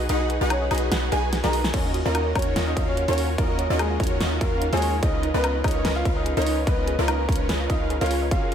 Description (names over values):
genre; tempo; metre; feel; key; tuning
future bass; 146 BPM; 4/4; swing 54% on 16ths, half-time; unclear; A4 = 439 Hz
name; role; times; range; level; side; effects
thumb-piano-like synth pluck; arpeggios; 0.0-8.5 s; D#4 to G#5; -34 LUFS; right 3 dB; chorus, sidechain pumping, ping-pong delay
supersaw stab; riff; 0.0-8.5 s; C#4 to G#5; -26 LUFS; equal; sidechain pumping
warm 808-style bass; bass; 0.0-8.5 s; F#1 to D#2; -26 LUFS; equal; sidechain pumping
clear grand piano; melody; 0.1-8.5 s; G#3 to A#5; -29 LUFS; equal; sidechain pumping, ping-pong delay
big-room dance drum kit; drums; 0.1-8.5 s; crash cymbal, hi-hat, snare drum, woodblock; -30 LUFS; left 2 dB; none
electronic kick drum; drums; 1.7-8.4 s; none; -25 LUFS; equal; none
room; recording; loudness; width
light reverb; none; -20 LUFS; side -8 dB against mid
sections
0.0-1.7 A section; 1.7-8.5 A section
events
drop 0.0-1.7, 1.7-8.5; kick drops out 0.1-1.7; drum fill 1.3-1.7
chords
0.0 B6; 1.7 D#m9; 5.0 C#13